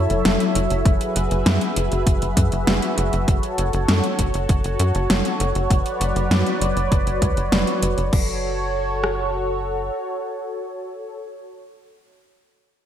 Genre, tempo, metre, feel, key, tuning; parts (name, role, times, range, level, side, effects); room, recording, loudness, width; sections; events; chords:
synthwave; 99 BPM; 4/4; straight; F# minor; A4 = 441 Hz
warm analog pad; sustained chords; 0.0-11.2 s; F#3 to E5; -23 LUFS; equal; chorus, sidechain pumping
tight sequencer bass; bass; 0.0-9.9 s; F#1 to F#2; -23 LUFS; equal; tube saturation
impact; sound effects; 0.0-0.9 s; barely audible
pop drum kit; drums; 0.1-8.2 s; crash cymbal, hi-hat, snare drum; -23 LUFS; equal; overdrive, gated reverb
pop drum kit; drums; 0.9-9.2 s; kick drum, rim click; -20 LUFS; equal; overdrive
moderate lush hall reverb, RT60 1.7 s; bright 1980s-style digital production; -18 LUFS; side -10 dB against mid
0.0-8.1 A section; 8.1-10.6 B section
impact 0.0-0.9
0.0 A/F#; 0.9 E/F#; 3.3 F#m; 5.7 Bmadd9/F#; 8.1 F#m